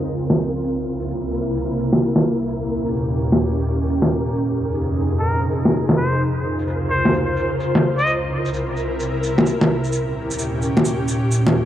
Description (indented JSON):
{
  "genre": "future garage",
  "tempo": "129 BPM",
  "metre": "4/4",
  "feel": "swing 64% on 16ths",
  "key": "unclear",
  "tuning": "A4 = 440 Hz",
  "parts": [
    { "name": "ethereal airy pad", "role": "sustained chords", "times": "0.0-11.7 s", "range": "C2 to C5", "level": "-20 LUFS", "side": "equal", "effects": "ensemble chorus, built-in reverb" },
    { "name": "flickering grainy texture", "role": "texture", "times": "0.0-11.7 s", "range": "Bb4", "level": "-31 LUFS", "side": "right 1 dB", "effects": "built-in reverb" },
    { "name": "shaker and bongos", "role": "drums", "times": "0.2-11.5 s", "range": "none", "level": "-18 LUFS", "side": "equal", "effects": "none" },
    { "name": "trumpet with straight mute", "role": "melody", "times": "5.2-8.1 s", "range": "Bb4 to Eb5", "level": "-25 LUFS", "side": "left 1 dB", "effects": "analog delay" }
  ],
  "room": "light reverb",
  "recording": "dry, gritty hardware recording, vinyl crackle, low-pass filter",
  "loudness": "-18 LUFS",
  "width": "side -11 dB against mid",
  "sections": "0.0-11.7 A section",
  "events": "filter sweep on ambient pad 0.0-11.7; filter sweep 0.0-11.7",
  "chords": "0.0 Dbmaj7; 0.6 C7; 2.5 Eb7; 4.3 Fm7; 6.2 Dbmaj7; 8.1 C7; 9.9 Eb7",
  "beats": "0.15 | 0.62 1.08 1.55 2.01 | 2.48 2.94 3.41 3.87 | 4.34 4.80 5.27 5.73 | 6.20 6.66 7.13 7.59 | 8.06 8.53 8.99 9.46 | 9.92 10.38 10.85 11.32"
}